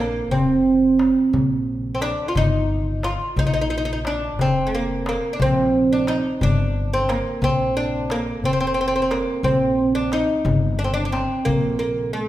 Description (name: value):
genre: Arabic maqam ensemble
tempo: 59 BPM (dotted quarters)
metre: 6/8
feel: straight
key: unclear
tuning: A4 = 442 Hz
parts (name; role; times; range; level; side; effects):
- oud; melody; 0.0-12.3 s; Ab3+50c to F4; -20 LUFS; right 1 dB; none
- upright bass; bass; 0.0-12.2 s; F1 to Bb1; -26 LUFS; equal; none
- darbuka; percussion; 0.3-11.6 s; none; -26 LUFS; left 2 dB; none
room: wet recital hall reverb, RT60 1.7 s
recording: recorded in a church or concert hall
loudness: -18 LUFS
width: side -14 dB against mid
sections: 0.0-12.3 A section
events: none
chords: none